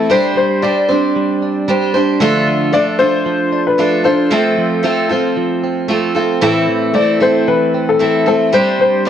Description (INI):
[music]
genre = acoustic pop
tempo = 114 BPM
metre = 4/4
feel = swing 55% on 16ths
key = unclear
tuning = A4 = 440 Hz
[part]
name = warm upright piano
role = melody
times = 0.0-9.1 s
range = A4 to D5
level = -16 LUFS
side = left 4 dB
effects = cassette tape, analog delay
[part]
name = picked steel-string acoustic guitar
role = accompaniment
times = 0.0-9.1 s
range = A2 to C5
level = -14 LUFS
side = equal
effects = cassette tape
[part]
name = direct-recorded clean electric guitar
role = arpeggios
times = 0.0-9.1 s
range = E3 to E4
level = -21 LUFS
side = right 7 dB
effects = cassette tape
[sound]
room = moderate spring reverb, RT60 1.2 s, studio reverb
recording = home recording on cassette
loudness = -12 LUFS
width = side -9 dB against mid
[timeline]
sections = 0.0-9.1 A section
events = none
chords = 0.1 Gsus4; 2.2 Dm; 4.3 F; 6.4 Am; 8.5 Gsus4